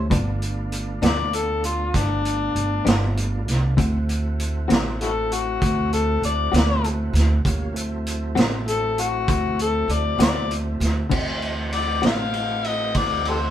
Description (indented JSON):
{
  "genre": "slow blues",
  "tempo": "65 BPM (dotted quarters)",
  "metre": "12/8",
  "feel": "straight",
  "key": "D mixolydian",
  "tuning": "A4 = 442 Hz",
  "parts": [
    { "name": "overdriven harmonica", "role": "melody", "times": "0.0-13.5 s", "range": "D4 to F5", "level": "-24 LUFS", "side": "left 5 dB", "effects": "none" },
    { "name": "tonewheel organ", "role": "sustained chords", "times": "0.0-13.5 s", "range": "E3 to F#4", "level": "-32 LUFS", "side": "right 2 dB", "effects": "slow rotary speaker" },
    { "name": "upright bass", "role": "bass", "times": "0.0-13.5 s", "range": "G1 to D2", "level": "-24 LUFS", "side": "right 1 dB", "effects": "none" },
    { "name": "clean electric guitar", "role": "accompaniment", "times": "0.1-12.2 s", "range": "G2 to F#4", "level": "-25 LUFS", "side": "left 4 dB", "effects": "tremolo" },
    { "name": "vintage drum kit", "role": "drums", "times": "0.1-13.4 s", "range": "crash cymbal, hi-hat, kick drum, ride cymbal, snare drum", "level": "-24 LUFS", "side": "right 1 dB", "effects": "none" }
  ],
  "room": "moderate studio reverb, RT60 0.8 s",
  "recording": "band playing live in one room",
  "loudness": "-20 LUFS",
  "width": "side -11 dB against mid",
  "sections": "0.0-11.1 A section; 11.1-13.5 A section",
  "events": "harmonica solo 0.0-13.5",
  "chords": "0.1 G7; 3.8 D7"
}